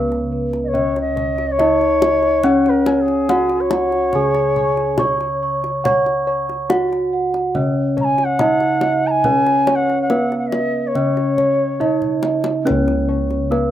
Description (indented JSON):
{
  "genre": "Javanese gamelan",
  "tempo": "70 BPM",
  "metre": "4/4",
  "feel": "straight",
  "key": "C# slendro",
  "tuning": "A4 = 439 Hz",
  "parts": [
    { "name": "gamelan-type bronze metallophone", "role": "melody", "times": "0.0-13.7 s", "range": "B3-40c to C#5", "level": "-20 LUFS", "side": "right 1 dB", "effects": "none" },
    { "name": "gamelan-type bossed gongs", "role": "arpeggios", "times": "0.0-13.7 s", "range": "B4-40c to C#6", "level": "-26 LUFS", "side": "left 4 dB", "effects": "slapback echo" },
    { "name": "gamelan-type bronze metallophone", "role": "arpeggios", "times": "0.0-13.7 s", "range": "B4-40c to C#6", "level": "-23 LUFS", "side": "right 4 dB", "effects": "slapback echo" },
    { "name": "gamelan-type bossed gongs", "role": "bass", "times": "0.0-13.7 s", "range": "C#2 to C#5", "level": "-24 LUFS", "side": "equal", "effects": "none" },
    { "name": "kendang", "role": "percussion", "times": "0.1-13.7 s", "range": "none", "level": "-26 LUFS", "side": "left 2 dB", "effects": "none" },
    { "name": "reedy bansuri", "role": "second line", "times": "0.6-12.5 s", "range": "G#4+26c to A#5", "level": "-19 LUFS", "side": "left 2 dB", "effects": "slapback echo" }
  ],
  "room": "light reverb",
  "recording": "recorded outdoors, with no room sound",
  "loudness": "-15 LUFS",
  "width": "side -12 dB against mid",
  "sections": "0.0-13.7 A section",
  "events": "drum fill 11.8-12.7",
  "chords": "none",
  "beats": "0.74 1.59 | 2.44 3.29 4.14 4.99 | 5.84 6.70 7.55 8.40 | 9.25 10.10 10.95 11.80 | 12.65 13.50"
}